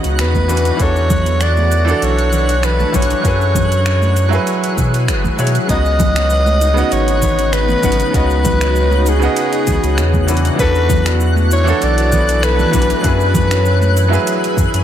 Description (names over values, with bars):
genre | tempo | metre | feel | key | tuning
sunset chillout | 98 BPM | 4/4 | swing 53% on 16ths | C# minor | A4 = 440 Hz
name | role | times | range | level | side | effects
bright baby grand piano | accompaniment | 0.0-14.8 s | C#3 to F#5 | -21 LUFS | moving between left 4 dB and right 6 dB | auto-pan, vintage 12-bit sampler grit, dub echo
shimmering ambient pad | sustained chords | 0.0-14.8 s | C#3 to B4 | -23 LUFS | left 1 dB | chorus, built-in reverb
warm sub bass | bass | 0.0-14.8 s | F#1 to B2 | -15 LUFS | equal | none
smooth R&B drum kit | drums | 0.0-14.8 s | cabasa, congas, finger snaps, hi-hat | -24 LUFS | left 2 dB | analog delay
twinkling granular texture | texture | 0.0-14.8 s | F#6 | -26 LUFS | equal | built-in reverb
growling soprano saxophone | melody | 0.2-14.2 s | G#4 to D#5 | -19 LUFS | equal | dub echo
electronic kick drum | drums | 0.3-14.7 s | none | -19 LUFS | equal | none
congas | percussion | 0.3-14.7 s | none | -27 LUFS | right 4 dB | analog delay
concert harp | arpeggios | 5.7-14.8 s | B3 to B4 | -25 LUFS | left 4 dB | dub echo
room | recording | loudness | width
light reverb, studio reverb | echo-heavy mix | -12 LUFS | side -10 dB against mid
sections
0.0-5.7 A section; 5.7-14.8 B section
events
none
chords
0.5 E9sus4; 3.2 F#9sus4; 5.7 C#9sus4; 10.3 E9sus4; 13.0 F#9sus4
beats
0.18 | 0.80 1.41 2.02 2.63 | 3.25 3.86 4.47 5.08 | 5.70 6.31 6.92 7.53 | 8.14 8.76 9.37 9.98 | 10.59 11.21 11.82 12.43 | 13.04 13.65 14.27